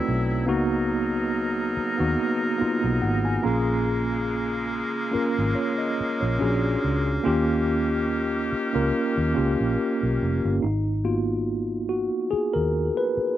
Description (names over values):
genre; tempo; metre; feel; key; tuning
R&B; 71 BPM; 4/4; swing 55% on 16ths; G# dorian; A4 = 440 Hz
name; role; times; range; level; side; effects
mellow tine electric piano; accompaniment; 0.0-13.4 s; A3 to A#5; -24 LUFS; equal; medium stereo tremolo
clear woodwind section; sustained chords; 0.0-10.6 s; A#2 to A#4; -29 LUFS; left 1 dB; none
vintage muted fingered electric bass; bass; 0.1-13.2 s; E#1 to D#2; -27 LUFS; equal; none
room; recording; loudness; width
little or no reverb; recorded outdoors, with no room sound; -22 LUFS; side -12 dB against mid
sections
0.0-10.6 A section; 10.6-13.4 B section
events
tine electric piano fill 2.6-3.9; tine electric piano solo 10.6-13.4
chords
0.5 C#13sus4; 3.4 A#m7; 6.4 A#7alt; 7.2 D#7; 10.6 G#m9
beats
| 0.48 1.32 2.17 3.01 | 3.86 4.70 5.55 6.39 | 7.24 8.08 8.93 9.77 | 10.62 11.46 12.31 13.15